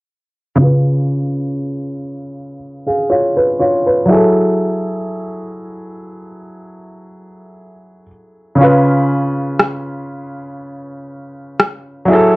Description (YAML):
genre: contemporary R&B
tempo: 60 BPM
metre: 4/4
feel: swing 54% on 16ths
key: unclear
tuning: A4 = 440 Hz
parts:
  - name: warm grand piano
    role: accompaniment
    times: 0.6-12.4 s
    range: C#3 to E#5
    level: -14 LUFS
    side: equal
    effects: low-pass filter, cassette tape
  - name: electronic rim click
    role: drums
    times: 9.6-11.8 s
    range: none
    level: -13 LUFS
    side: left 1 dB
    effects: cassette tape
room: moderate studio reverb, RT60 0.5 s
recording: home recording on cassette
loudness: -13 LUFS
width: side -22 dB against mid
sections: 0.6-12.4 A section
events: filter sweep on grand piano 0.6-12.4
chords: 0.6 C#7; 4.1 F#m9; 8.6 C#7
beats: | 0.58 1.58 2.58 3.58 | 4.58 5.58 6.58 7.58 | 8.58 9.58 10.58 11.58